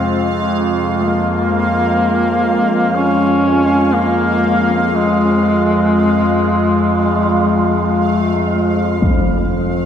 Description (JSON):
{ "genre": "dark ambient drone", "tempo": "free time", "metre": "none", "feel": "none", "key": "unclear", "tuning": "A4 = 443 Hz", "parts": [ { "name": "clear duduk", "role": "melody", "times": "0.0-8.0 s", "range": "Ab3 to Db4", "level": "-17 LUFS", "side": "equal", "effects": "tape echo" }, { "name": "sweeping resonant pad", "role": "sustained chords", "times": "0.0-9.9 s", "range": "C3 to F4", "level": "-17 LUFS", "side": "left 1 dB", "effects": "chorus" }, { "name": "overtone-sweeping drone", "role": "drone", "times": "0.0-9.9 s", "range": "F2", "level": "-19 LUFS", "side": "equal", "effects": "chorus, built-in reverb" }, { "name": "bubbling stepped-filter texture", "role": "texture", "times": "0.0-9.9 s", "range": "F5", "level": "-26 LUFS", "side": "right 3 dB", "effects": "chorus, built-in reverb" }, { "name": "gamelan-type bronze metallophone", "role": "arpeggios", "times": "9.0-9.9 s", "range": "none", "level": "barely audible", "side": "none", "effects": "none" }, { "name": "impact", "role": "percussion", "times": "9.0-9.2 s", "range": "none", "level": "-16 LUFS", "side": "equal", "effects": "low-pass filter on sfx" } ], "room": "wet spring reverb, RT60 2.7 s", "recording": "echo-heavy mix", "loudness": "-12 LUFS", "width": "side -8 dB against mid", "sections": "0.0-9.0 A section", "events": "none", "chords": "0.0 Fm; 0.9 Db (rootless); 9.0 Fm" }